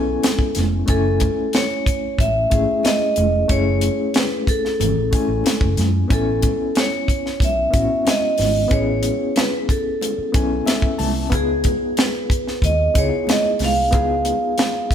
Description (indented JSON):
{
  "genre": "lush 1970s-style soul",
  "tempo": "92 BPM",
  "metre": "4/4",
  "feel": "straight",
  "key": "F# dorian",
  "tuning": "A4 = 440 Hz",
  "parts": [
    { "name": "vibraphone with hard mallets", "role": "melody", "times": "0.0-14.9 s", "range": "G#4 to E#5", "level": "-22 LUFS", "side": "right 2 dB", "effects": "none" },
    { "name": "barky reed electric piano", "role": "accompaniment", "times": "0.0-14.9 s", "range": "A3 to A5", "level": "-23 LUFS", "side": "left 5 dB", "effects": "overdrive, medium tremolo" },
    { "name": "vintage muted fingered electric bass", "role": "bass", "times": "0.0-14.3 s", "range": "E#1 to F#2", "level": "-22 LUFS", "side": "equal", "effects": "none" },
    { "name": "tight funk drum kit", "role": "drums", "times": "0.2-14.9 s", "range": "hi-hat, kick drum, snare drum", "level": "-20 LUFS", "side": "equal", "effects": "none" },
    { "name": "congas", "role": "percussion", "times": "0.2-14.7 s", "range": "none", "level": "-29 LUFS", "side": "right 6 dB", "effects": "none" }
  ],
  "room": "light reverb",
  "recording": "band playing live in one room",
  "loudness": "-16 LUFS",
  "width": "side -9 dB against mid",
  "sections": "0.0-14.9 A section",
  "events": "reed electric piano fill 10.3-11.3",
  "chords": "0.0 Amaj7; 0.9 F#m7; 6.1 Amaj7; 11.3 C#7"
}